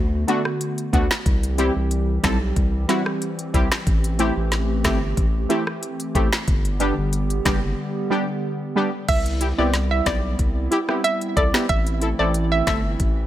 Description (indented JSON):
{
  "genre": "dancehall",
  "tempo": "92 BPM",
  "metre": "4/4",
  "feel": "straight",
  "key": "unclear",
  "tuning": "A4 = 440 Hz",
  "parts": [
    { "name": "hollow soft pad", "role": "sustained chords", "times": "0.0-13.3 s", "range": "D3 to G4", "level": "-28 LUFS", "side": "right 1 dB", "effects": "chorus, sidechain pumping" },
    { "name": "saturated sub bass", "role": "bass", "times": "0.0-13.3 s", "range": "F#1 to D2", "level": "-23 LUFS", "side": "equal", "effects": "none" },
    { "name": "synth brass stab", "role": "accompaniment", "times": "0.3-12.8 s", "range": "G3 to A4", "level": "-24 LUFS", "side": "equal", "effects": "chorus" },
    { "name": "island pop drum kit", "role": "drums", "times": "0.3-13.2 s", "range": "crash cymbal, finger snaps, hi-hat, kick drum, rim click, snare drum", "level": "-22 LUFS", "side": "equal", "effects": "none" },
    { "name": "hollow square pluck", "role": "melody", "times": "9.1-12.8 s", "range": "D5 to E5", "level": "-24 LUFS", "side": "right 2 dB", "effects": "chorus, tape echo" }
  ],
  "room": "light reverb",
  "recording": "none",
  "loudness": "-19 LUFS",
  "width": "side -13 dB against mid",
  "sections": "0.0-9.1 A section; 9.1-13.3 B section",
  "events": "break 7.8-9.1",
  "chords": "0.0 D6; 1.3 C; 3.9 Am7; 6.5 G; 9.1 Cmaj7; 11.7 Am",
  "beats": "0.61 | 1.26 1.91 2.56 3.22 | 3.87 4.52 5.17 5.82 | 6.48 7.13 7.78 8.43 | 9.09 9.74 10.39 11.04 | 11.69 12.35 13.00"
}